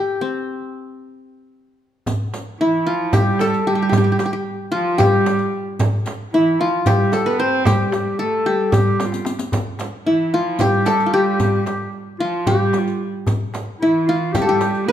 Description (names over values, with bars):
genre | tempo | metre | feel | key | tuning
Turkish makam ensemble | 225 BPM (eighths) | 7/8 | straight | unclear | A4 = 441 Hz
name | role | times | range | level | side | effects
qanun | melody | 0.0-14.9 s | C4 to C5 | -19 LUFS | left 2 dB | none
darbuka | percussion | 2.1-14.9 s | none | -23 LUFS | equal | none
frame drum | percussion | 2.1-14.7 s | none | -24 LUFS | right 2 dB | none
riq | percussion | 2.1-14.8 s | none | -30 LUFS | left 3 dB | none
breathy clarinet | second line | 2.6-14.9 s | E4 to C5 | -24 LUFS | left 2 dB | none
rich cello | second line | 2.6-14.9 s | E3 to C4 | -24 LUFS | right 7 dB | none
room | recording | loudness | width
moderate recital hall reverb, RT60 1.6 s | minimal, uncompressed stereo recording | -16 LUFS | side -10 dB against mid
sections
0.0-2.1 A section; 2.1-14.9 B section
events
break 0.2-2.1; drum fill 9.0-9.5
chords
none